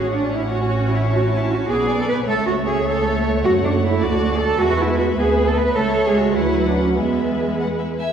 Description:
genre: quick classical-period movement for string orchestra.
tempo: 102 BPM (dotted quarters).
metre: 6/8.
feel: straight.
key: unclear.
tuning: A4 = 438 Hz.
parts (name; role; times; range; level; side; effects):
rich chamber violin section; melody; 0.0-8.1 s; E5 to A5; -31 LUFS; left 4 dB; none.
rich chamber violin section; second line; 0.0-8.0 s; B4 to D5; -26 LUFS; left 2 dB; none.
clear chamber viola section; accompaniment; 0.0-8.0 s; F#3 to C#4; -23 LUFS; right 2 dB; none.
clear chamber double bass section; bass; 0.0-8.0 s; A1 to F#2; -23 LUFS; right 2 dB; none.
rich chamber cello section; bass; 0.0-7.6 s; B3 to B4; -21 LUFS; right 2 dB; none.
room: wet scoring stage reverb, RT60 1.5 s.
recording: heard from further back in the room.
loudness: -16 LUFS.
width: side -8 dB against mid.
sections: 0.0-8.1 A section.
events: none.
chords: 0.0 F#m/A; 1.1 A; 1.7 G#dim/B; 2.3 A/C#; 3.4 F#m; 4.0 D; 4.6 E; 5.2 E7/D; 5.8 A/C#; 6.4 Bm/D; 7.0 E.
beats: 0.51 | 1.10 1.69 | 2.27 2.86 | 3.44 4.02 | 4.60 5.18 | 5.78 6.37 | 6.98 7.59.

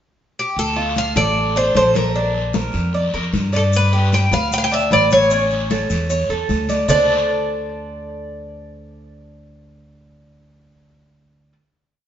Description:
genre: latin, Cuban son and guajira.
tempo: 152 BPM.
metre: 4/4.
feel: straight.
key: D minor.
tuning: A4 = 439 Hz.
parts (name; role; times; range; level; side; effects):
Cuban tres; melody; 0.4-11.5 s; G4 to G5; -18 LUFS; equal; tape echo.
upright bass; bass; 0.6-11.5 s; A1 to G2; -22 LUFS; equal; none.
congas; percussion; 0.6-7.0 s; none; -26 LUFS; left 3 dB; none.
guiro; percussion; 0.6-7.0 s; none; -31 LUFS; left 2 dB; none.
Cuban tres; arpeggios; 0.8-11.5 s; C#4 to D5; -22 LUFS; right 1 dB; none.
maracas; percussion; 3.7-7.0 s; none; -35 LUFS; left 5 dB; none.
room: wet stone room reverb, RT60 1.3 s.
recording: band playing live in one room, nothing above 7.6 kHz.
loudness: -15 LUFS.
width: side -10 dB against mid.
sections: 0.0-0.6 pickup bar; 0.6-6.9 verse; 6.9-10.1 final chord.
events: none.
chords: 0.0 N.C.; 0.6 Dm; 2.1 Bb; 3.7 G; 5.3 A; 6.9 D5.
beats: 0.17 | 0.57 0.96 1.36 1.75 | 2.15 2.54 2.94 3.33 | 3.73 4.12 4.52 4.92 | 5.31 5.71 6.10 6.50 | 6.89 7.29 7.68 8.08 | 8.48 8.87 9.27 9.66.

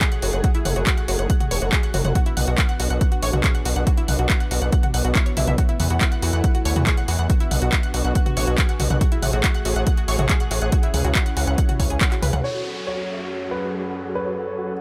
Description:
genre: uplifting trance.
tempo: 140 BPM.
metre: 4/4.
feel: straight.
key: F# minor.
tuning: A4 = 441 Hz.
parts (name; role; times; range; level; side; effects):
dark studio string section; sustained chords; 0.0-14.8 s; F#2 to A4; -32 LUFS; equal; vintage 12-bit sampler grit, sidechain pumping, low-pass filter.
analog pluck; arpeggios; 0.0-12.4 s; E4 to F#5; -32 LUFS; equal; subtle chorus, sidechain pumping, tape echo.
electronic kick drum; drums; 0.0-12.1 s; none; -22 LUFS; equal; overdrive.
punchy analog drum machine; drums; 0.0-12.4 s; handclaps, hi-hat, toms; -27 LUFS; equal; overdrive, low-pass filter on hats, low-pass filter on snare, low-pass filter on cymbals, low-pass filter on toms.
gritty driven synth bass; bass; 0.2-12.4 s; E1 to E2; -24 LUFS; equal; distortion, sidechain pumping.
supersaw chords; melody; 12.4-14.8 s; F#4 to G#5; -34 LUFS; equal; sidechain pumping, low-pass filter, tape echo.
dark grand piano; second line; 12.4-14.7 s; B4 to C#5; -31 LUFS; equal; dub echo.
downlifter; sound effects; 12.4-14.8 s; none; -37 LUFS; equal; none.
room: little or no reverb.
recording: none.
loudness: -21 LUFS.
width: mono.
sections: 0.0-12.4 A section; 12.4-14.8 B section.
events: filter sweep on supersaw synth 12.4-14.8.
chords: 0.0 F#madd9; 2.2 Bm; 5.6 Esus4; 7.3 Bm; 9.0 F#madd9/A; 10.7 C#m; 12.4 F#madd9.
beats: 0.01 | 0.44 0.87 1.30 1.73 | 2.15 2.58 3.01 3.44 | 3.87 4.30 4.72 5.15 | 5.58 6.01 6.44 6.87 | 7.30 7.72 8.15 8.58 | 9.01 9.44 9.87 10.30 | 10.72 11.15 11.58 12.01 | 12.44 12.87 13.30 13.72 | 14.15 14.58.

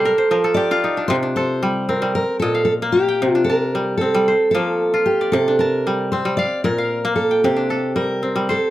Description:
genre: west african traditional.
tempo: 114 BPM.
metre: 4/4.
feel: straight.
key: C dorian.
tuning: A4 = 440 Hz.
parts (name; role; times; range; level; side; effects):
fingerpicked steel-string acoustic guitar; melody; 0.0-8.7 s; G4 to D5; -18 LUFS; equal; plate reverb.
kora; arpeggios; 0.0-8.7 s; Bb2 to A5; -20 LUFS; left 1 dB; none.
room: moderate studio ambience, RT60 0.5 s.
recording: none.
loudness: -16 LUFS.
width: side -14 dB against mid.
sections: 0.0-8.7 A section.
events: kora fill 0.0-1.1.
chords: 0.1 N.C.; 1.1 C5; 2.2 Bb5; 3.2 C5; 4.3 F; 5.3 C5; 6.4 Bb5; 7.4 C5.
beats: 0.05 0.58 | 1.11 1.63 2.16 2.69 | 3.21 3.74 4.27 4.80 | 5.33 5.86 6.38 6.91 | 7.44 7.97 8.50.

